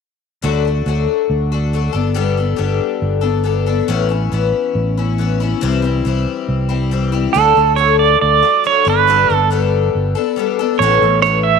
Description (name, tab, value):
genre	folk rock and heartland rock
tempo	139 BPM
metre	4/4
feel	straight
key	unclear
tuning	A4 = 440 Hz
part	picked twelve-string acoustic guitar	accompaniment	0.4-11.6 s	A2 to A4	-18 LUFS	left 12 dB	none
part	fingered electric bass	bass	0.4-11.6 s	G1 to D2	-18 LUFS	right 1 dB	none
part	pedal steel guitar	melody	7.3-11.6 s	A4 to E5	-12 LUFS	right 11 dB	none
room	light reverb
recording	1960s-style stereo with parts hard left and right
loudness	-13 LUFS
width	side -6 dB against mid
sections	0.4-7.3 A section; 7.3-11.6 B section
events	none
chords	0.4 D; 1.9 Gadd9; 3.9 Aadd9; 5.6 C; 7.3 D; 8.9 Gadd9; 10.8 Aadd9